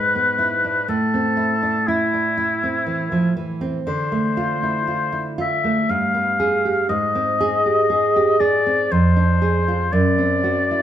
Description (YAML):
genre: romantic duo for oboe and classical guitar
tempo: 60 BPM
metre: 3/4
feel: rubato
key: unclear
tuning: A4 = 441 Hz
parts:
  - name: warm oboe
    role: melody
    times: 0.0-10.8 s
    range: E4 to F5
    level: -20 LUFS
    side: left 3 dB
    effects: none
  - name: nylon-string guitar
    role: accompaniment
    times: 0.0-10.8 s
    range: F2 to Ab4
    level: -20 LUFS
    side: right 2 dB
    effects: none
room: wet stone room reverb, RT60 1.1 s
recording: band playing live in one room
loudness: -17 LUFS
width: side -10 dB against mid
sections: 0.0-10.8 A section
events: none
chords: 0.0 E/G#; 0.9 Am; 3.9 Dm7; 5.9 G7b9; 6.9 Ab; 8.9 Dm7b5/F; 9.9 D7/F#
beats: | 0.88 1.87 2.86 | 3.87 4.89 5.89 | 6.90 7.90 8.91 | 9.93